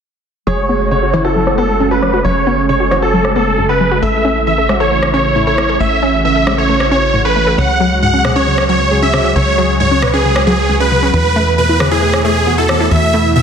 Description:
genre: uplifting trance.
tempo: 135 BPM.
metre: 4/4.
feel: straight.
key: F# minor.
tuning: A4 = 437 Hz.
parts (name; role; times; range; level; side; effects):
supersaw chords; melody; 0.5-13.4 s; G#4 to F#5; -15 LUFS; right 1 dB; low-pass filter, digital delay.
bright concert grand piano; second line; 0.5-13.4 s; G#4 to F#5; -24 LUFS; equal; none.
glassy wavetable pluck; second line; 0.5-13.4 s; C#4 to C#5; -21 LUFS; right 2 dB; chorus, digital delay.
lush unison pad; sustained chords; 0.5-13.4 s; B2 to G#4; -20 LUFS; equal; chorus.
wide unison pluck; arpeggios; 0.5-13.4 s; C#2 to A4; -18 LUFS; left 2 dB; digital delay.
tight sequencer bass; bass; 0.5-13.4 s; F#1 to E2; -18 LUFS; equal; none.
electronic rim click; drums; 1.1-12.8 s; none; -20 LUFS; equal; soft clipping on snare, low-pass filter on snare, low-pass filter on room.
room: light reverb.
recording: dense, heavily limited modern master.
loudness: -10 LUFS.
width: side -7 dB against mid.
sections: 0.5-13.4 A section.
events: filter sweep on drum 0.5-13.4; filter sweep on supersaw synth 0.5-13.4; filter sweep on synth arpeggio sound 0.5-13.4.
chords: 0.5 F#madd9; 4.0 A; 7.6 C#sus4; 11.1 Esus4.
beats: | 0.47 0.91 1.36 1.80 | 2.25 2.69 3.14 3.58 | 4.03 4.47 4.91 5.36 | 5.80 6.25 6.69 7.14 | 7.58 8.03 8.47 8.91 | 9.36 9.80 10.25 10.69 | 11.14 11.58 12.03 12.47 | 12.91 13.36.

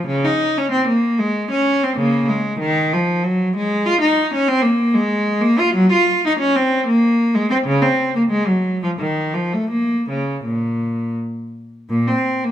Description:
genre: classical, baroque-style suite movement for unaccompanied cello.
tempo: 78-97 BPM.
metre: 3/4.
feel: rubato.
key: Bb minor.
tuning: A4 = 440 Hz.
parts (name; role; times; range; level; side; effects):
rich cello; solo; 0.0-12.5 s; Bb2 to F4; -16 LUFS; equal; none.
room: moderate recital hall reverb, RT60 1.3 s.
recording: close, detailed microphones.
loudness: -16 LUFS.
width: side -11 dB against mid.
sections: 0.0-11.9 A section.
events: none.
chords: none.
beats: | 0.07 0.71 1.33 | 1.97 2.60 3.23 | 3.85 4.48 5.11 | 5.77 6.42 7.05 | 7.68 8.32 9.01 | 9.72 10.44 11.16 | 11.91.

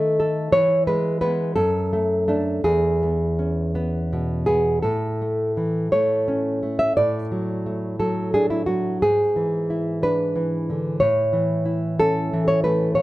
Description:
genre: romantic piece for solo classical guitar.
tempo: 53-62 BPM (dotted quarters).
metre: 6/8.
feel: rubato.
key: A major.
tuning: A4 = 440 Hz.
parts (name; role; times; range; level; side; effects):
nylon-string guitar; solo; 0.0-13.0 s; E2 to E5; -19 LUFS; equal; none.
room: light reverb.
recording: close, detailed microphones.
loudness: -19 LUFS.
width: side -17 dB against mid.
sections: 0.0-4.8 A section; 4.8-13.0 B section.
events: none.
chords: 0.0 B7/D#; 0.5 E; 1.6 D/F#; 2.6 E; 4.8 A; 7.0 D/A; 9.0 E7/G#; 11.0 A.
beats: | 0.52 1.56 | 2.64 3.75 | 4.84 5.91 | 6.96 7.99 | 9.00 10.02 | 11.01 11.98 | 12.96.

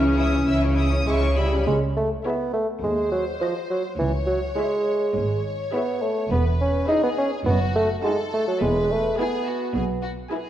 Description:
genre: cinematic.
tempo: 104 BPM.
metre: 4/4.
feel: straight.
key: C# minor.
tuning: A4 = 439 Hz.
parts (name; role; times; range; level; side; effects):
mellow clarinet; second line; 0.0-1.3 s; C#4; -24 LUFS; left 1 dB; none.
rich studio violin section; second line; 0.0-10.5 s; F#4 to A5; -33 LUFS; left 2 dB; none.
rich studio viola section; accompaniment; 0.0-10.5 s; C#4 to C5; -32 LUFS; equal; none.
clear French horn section; sustained chords; 0.0-1.4 s; E3 to C#4; -28 LUFS; left 1 dB; none.
clear studio cello section; bass; 0.0-10.2 s; C#2 to C#3; -28 LUFS; right 1 dB; none.
rich studio double bass section; bass; 0.0-10.2 s; E1 to Eb2; -26 LUFS; right 1 dB; none.
clear studio violin section; melody; 0.2-10.5 s; F#4 to E6; -32 LUFS; left 5 dB; none.
mellow bassoon; accompaniment; 1.1-10.0 s; E3 to D#4; -23 LUFS; right 1 dB; none.
room: moderate scoring stage reverb, RT60 1.8 s.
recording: dark, warm production.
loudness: -20 LUFS.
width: side -11 dB against mid.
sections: 0.0-1.7 A section; 1.7-10.5 A section.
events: none.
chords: 0.0 C#m; 2.8 Cdim/Eb; 4.0 C#m; 6.3 E; 7.5 D#dim/F#; 8.6 E.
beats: 0.47 1.07 | 1.67 2.25 2.83 3.41 | 3.99 4.58 5.16 5.74 | 6.31 6.89 7.46 8.04 | 8.61 9.19 9.75 10.32.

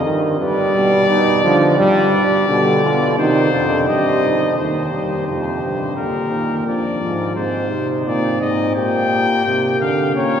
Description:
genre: classical, imitative canzona for brass ensemble.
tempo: 86 BPM.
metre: 4/4.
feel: straight.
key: unclear.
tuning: A4 = 437 Hz.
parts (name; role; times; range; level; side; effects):
clear trumpet; melody; 0.0-10.4 s; Bb4 to G5; -21 LUFS; left 3 dB; none.
mellow flugelhorn; second line; 0.0-10.4 s; D4 to B4; -22 LUFS; right 3 dB; none.
warm trombone; accompaniment; 0.0-10.4 s; C3 to Db4; -19 LUFS; equal; none.
warm euphonium; bass; 0.0-10.4 s; Eb2 to D3; -21 LUFS; equal; none.
room: wet cathedral reverb, RT60 5.9 s.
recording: recorded in a church or concert hall.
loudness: -15 LUFS.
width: side -8 dB against mid.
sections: 0.0-4.6 A section; 4.6-10.4 B section.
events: none.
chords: 0.4 G; 3.2 Cm; 4.6 Cm/Eb; 6.0 Bb; 7.4 Ab; 8.8 Gm/Bb.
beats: 0.40 1.09 | 1.79 2.48 3.18 3.88 | 4.58 5.28 5.97 6.67 | 7.37 8.06 8.76 9.46 | 10.15.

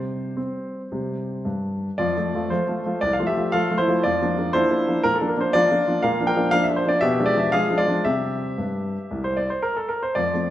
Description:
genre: classical-period piano sonatina.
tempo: 110-122 BPM.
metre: 4/4.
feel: rubato.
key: F major.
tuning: A4 = 440 Hz.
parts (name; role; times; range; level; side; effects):
warm grand piano; solo; 0.0-10.5 s; C2 to G5; -20 LUFS; equal; none.
room: wet recital hall reverb, RT60 1.5 s.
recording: lossy compression artefacts.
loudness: -20 LUFS.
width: side -13 dB against mid.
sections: 0.0-2.0 A section; 2.0-10.5 B section.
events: none.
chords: 0.0 C5; 2.0 F; 4.0 Bb/F; 6.0 Bb; 7.0 Bdim7; 8.0 C.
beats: 0.37 0.91 1.45 | 1.98 2.50 3.01 3.53 | 4.03 4.53 5.02 5.53 | 6.02 6.52 7.02 7.53 | 8.05 8.57 9.11 9.64 | 10.16.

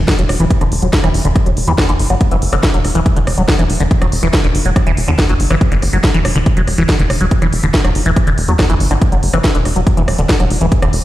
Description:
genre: psychedelic trance.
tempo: 141 BPM.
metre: 4/4.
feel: straight.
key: E minor.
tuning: A4 = 439 Hz.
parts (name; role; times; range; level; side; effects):
tight sequencer bass; bass; 0.0-11.0 s; E1 to E2; -15 LUFS; equal; none.
electronic kick drum; drums; 0.1-10.8 s; none; -14 LUFS; equal; overdrive.
techno drum kit; drums; 0.1-11.0 s; hi-hat, rim click, snare drum; -19 LUFS; equal; overdrive.
liquid acid bass; riff; 0.2-10.9 s; D3 to F#3; -18 LUFS; equal; phaser, auto-pan, cassette tape, sidechain pumping, ping-pong delay.
room: light reverb.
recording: played on a big sound system in a bare room, large studio reverb.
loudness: -11 LUFS.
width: side -15 dB against mid.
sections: 0.0-11.0 A section.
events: none.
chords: 0.0 E5.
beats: 0.08 0.51 0.93 | 1.36 1.78 2.21 2.63 | 3.06 3.48 3.91 4.33 | 4.76 5.19 5.61 6.04 | 6.46 6.89 7.31 7.74 | 8.16 8.59 9.02 9.44 | 9.87 10.29 10.72.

